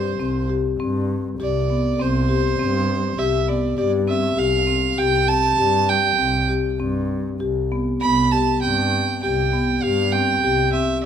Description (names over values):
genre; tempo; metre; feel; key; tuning
contemporary instrumental, chamber music in an uneven meter; 100 BPM; 5/4; straight; C major; A4 = 440 Hz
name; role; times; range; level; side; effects
dark violin; melody; 0.0-11.1 s; C5 to B5; -21 LUFS; right 6 dB; none
marimba with medium mallets; arpeggios; 0.0-11.0 s; B3 to G4; -22 LUFS; left 5 dB; none
muted double bass; bass; 0.0-10.9 s; C2 to G2; -24 LUFS; right 1 dB; none
room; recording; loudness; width
moderate recital hall reverb, RT60 1.6 s; minimal, uncompressed stereo recording; -18 LUFS; side -8 dB against mid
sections
0.0-11.1 A section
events
none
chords
0.0 C5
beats
0.19 0.79 1.40 | 1.99 2.59 3.18 3.78 4.38 | 4.98 5.58 6.18 6.79 7.40 | 8.01 8.62 9.22 9.83 10.44 | 11.04